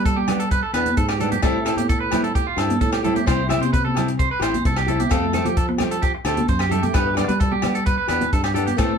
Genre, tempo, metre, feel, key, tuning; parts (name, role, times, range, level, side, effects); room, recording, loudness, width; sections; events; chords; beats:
highlife guitar band; 131 BPM; 4/4; straight; A4 = 440 Hz
electric guitar at the edge of break-up; arpeggios; 0.0-9.0 s; F4 to E5; -24 LUFS; right 4 dB
fingered electric bass; bass; 0.0-9.0 s; A1 to G3; -24 LUFS; equal
compact cocktail drum kit; drums; 0.1-8.9 s; hi-hat, kick drum, rim click; -24 LUFS; equal
congas; percussion; 0.2-8.8 s; -27 LUFS; right 2 dB
fingerpicked old ladder-braced acoustic guitar; accompaniment; 0.3-8.9 s; E3 to G4; -26 LUFS; left 4 dB
agogo bells; percussion; 0.3-8.9 s; -32 LUFS; left 4 dB
wet small room reverb, RT60 0.5 s; band playing live in one room; -18 LUFS; side -7 dB against mid
0.0-9.0 A section
0.0 G6; 1.4 Am7; 3.3 C; 5.1 Fadd9; 6.9 G6
0.05 0.51 0.97 | 1.43 1.89 2.35 2.81 | 3.27 3.73 4.19 4.65 | 5.11 5.57 6.03 6.49 | 6.95 7.40 7.86 8.32 | 8.78